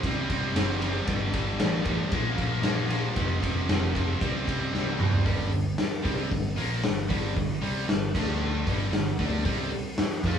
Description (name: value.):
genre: hard rock.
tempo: 115 BPM.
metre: 4/4.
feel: straight.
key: G minor.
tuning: A4 = 444 Hz.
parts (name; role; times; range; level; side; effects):
distorted electric guitar; riff; 0.0-10.4 s; F2 to F4; -30 LUFS; equal; overdrive.
picked electric bass; bass; 0.0-10.4 s; F1 to F2; -30 LUFS; equal; none.
raw garage drum kit; drums; 0.0-10.4 s; crash cymbal, hi-hat, kick drum, ride cymbal, snare drum, toms; -28 LUFS; equal; none.
room: moderate stone room reverb, RT60 1.1 s.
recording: band playing live in one room, small room ambience.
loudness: -24 LUFS.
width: side -8 dB against mid.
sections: 0.0-5.3 A section; 5.3-10.4 B section.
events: drum fill 4.7-5.3.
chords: 0.0 C5; 1.1 G5; 2.1 Bb5; 3.2 F5; 4.2 C5; 5.3 Gm; 8.1 D5; 8.7 G5; 9.4 C5.